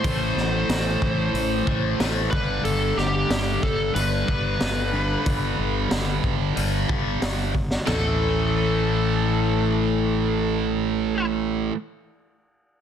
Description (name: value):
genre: hard rock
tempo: 92 BPM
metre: 4/4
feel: straight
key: A minor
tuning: A4 = 439 Hz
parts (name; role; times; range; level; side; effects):
- bluesy overdriven lead guitar; melody; 0.0-11.3 s; G4 to C5; -27 LUFS; equal; distortion, slapback echo
- overdriven semi-hollow guitar; riff; 0.0-11.8 s; G2 to A3; -28 LUFS; left 12 dB; phaser
- tight distorted guitar; riff; 0.0-11.8 s; G2 to A3; -27 LUFS; right 13 dB; distortion
- fuzz fingered electric bass; bass; 0.0-11.7 s; G1 to A1; -26 LUFS; equal; overdrive
- raw garage drum kit; drums; 0.0-8.0 s; hi-hat, kick drum, ride cymbal, snare drum, toms; -27 LUFS; equal; none
room: small room ambience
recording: dense, heavily limited modern master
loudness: -20 LUFS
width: side -8 dB against mid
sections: 0.0-7.9 A section; 7.9-10.5 B section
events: drum fill 7.5-7.9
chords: 0.0 Am; 2.3 G; 7.9 A5